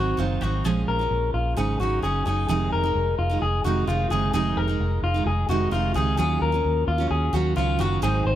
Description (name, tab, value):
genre	indie pop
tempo	130 BPM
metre	4/4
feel	straight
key	unclear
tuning	A4 = 440 Hz
part	picked steel-string acoustic guitar	accompaniment	0.0-8.4 s	F2 to F4	-27 LUFS	right 6 dB	none
part	electric guitar through a small old amp	arpeggios	0.0-8.4 s	F4 to C5	-26 LUFS	left 3 dB	none
part	vintage muted fingered electric bass	bass	0.0-8.4 s	F1 to Eb2	-25 LUFS	equal	none
room	light reverb, studio ambience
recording	none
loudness	-21 LUFS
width	side -12 dB against mid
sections	0.0-2.5 A section; 2.5-8.4 B section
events	none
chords	0.0 Ab7; 0.6 Bbm7; 1.6 Ab7sus4; 2.5 Fm7; 6.2 Ebm9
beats	0.19 | 0.65 1.11 1.57 2.04 | 2.50 2.96 3.42 3.88 | 4.34 4.80 5.27 5.73 | 6.19 6.65 7.11 7.57 | 8.03